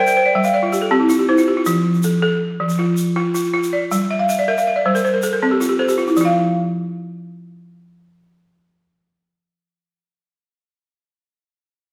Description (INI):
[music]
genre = west african traditional, West African string and xylophone music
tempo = 107 BPM (dotted quarters)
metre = 12/8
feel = straight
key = unclear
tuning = A4 = 436 Hz
[part]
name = bright wooden flute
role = melody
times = 0.0-0.9 s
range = G5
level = -20 LUFS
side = equal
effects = none
[part]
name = balafon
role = arpeggios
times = 0.0-9.6 s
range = F3 to F5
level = -18 LUFS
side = equal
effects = none
[part]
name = tube shaker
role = percussion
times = 0.1-6.3 s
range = none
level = -36 LUFS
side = equal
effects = none
[sound]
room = wet recital hall reverb, RT60 1.4 s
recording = heard from further back in the room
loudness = -18 LUFS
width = mono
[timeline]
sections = 0.0-6.2 A section; 6.2-8.4 B section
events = balafon fill 0.0-1.7, 4.1-6.2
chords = 0.0 Gm; 0.5 N.C.; 1.7 F; 3.9 Gm; 5.0 N.C.